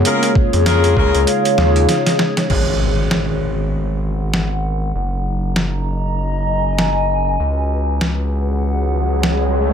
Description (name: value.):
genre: glitch hop.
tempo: 98 BPM.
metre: 4/4.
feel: swing 59% on 16ths.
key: G# dorian.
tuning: A4 = 440 Hz.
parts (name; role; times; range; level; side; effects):
warm analog pad; sustained chords; 0.0-9.7 s; C#3 to B4; -25 LUFS; left 2 dB; chorus, sidechain pumping.
clear horn section; stabs; 0.0-1.2 s; A#3 to A#4; -22 LUFS; left 1 dB; vintage 12-bit sampler grit, sidechain pumping, ping-pong delay.
gritty driven synth bass; bass; 0.0-9.7 s; F#1 to E#2; -19 LUFS; equal; tube saturation.
warbly tape-like pad; texture; 0.0-9.7 s; G#4 to A#5; -20 LUFS; left 1 dB; chorus, built-in reverb, sidechain pumping.
boom bap sampler-style drum kit; drums; 0.1-9.4 s; crash cymbal, hi-hat, rim click, snare drum; -20 LUFS; equal; overdrive.
electronic kick drum; drums; 0.4-1.1 s; none; -16 LUFS; equal; none.
impact and riser; sound effects; 2.5-9.7 s; none; -24 LUFS; equal; none.
room: moderate digital room reverb, RT60 1.2 s.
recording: none.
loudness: -15 LUFS.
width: side -8 dB against mid.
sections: 0.0-2.5 A section; 2.5-9.7 B section.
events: drum fill 1.6-2.5; break 1.9-2.5; impact 2.5-4.9; filter sweep on analog synth pad 2.5-9.7; riser 8.2-9.7.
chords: 0.1 A#m7; 1.3 D#9sus4; 2.5 G#m9; 4.9 F#6; 7.4 C#7sus4.